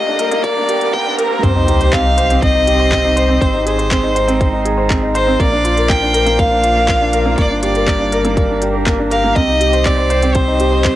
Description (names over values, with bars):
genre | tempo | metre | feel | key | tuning
piano and strings electronica | 121 BPM | 4/4 | straight | C minor | A4 = 439 Hz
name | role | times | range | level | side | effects
clear violin | melody | 0.0-11.0 s | Bb4 to G5 | -17 LUFS | equal | cassette tape
dark string quartet | sustained chords | 0.0-11.0 s | D3 to F5 | -23 LUFS | right 2 dB | sidechain pumping
felt-muted upright piano | riff | 0.0-11.0 s | Bb3 to C5 | -17 LUFS | equal | none
riser and sub drop | sound effects | 0.0-3.4 s | none | -21 LUFS | equal | none
organic electronic drum kit | drums | 0.2-10.9 s | handclaps, hi-hat | -23 LUFS | equal | high-pass filter on hats, cassette tape, high-pass filter on snare, high-pass filter on room
electronic kick drum | drums | 0.4-10.9 s | none | -18 LUFS | equal | cassette tape
warm sub bass | bass | 1.4-11.0 s | G1 to C2 | -19 LUFS | equal | sidechain pumping
room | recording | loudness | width
light reverb | home recording on cassette, high-pass filter | -12 LUFS | side -14 dB against mid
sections
0.0-1.4 A section; 1.4-11.0 B section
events
build-up 0.0-1.4; riser 0.0-1.4; drop 1.4-11.0; impact 1.4-3.4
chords
0.0 Gm; 1.4 Cm; 3.4 Ab; 5.4 Bb; 7.4 Gm; 9.4 Cm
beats
0.44 0.94 | 1.43 1.93 2.42 2.92 | 3.41 3.91 4.41 4.90 | 5.40 5.89 6.39 6.88 | 7.38 7.88 8.37 8.87 | 9.36 9.86 10.36 10.85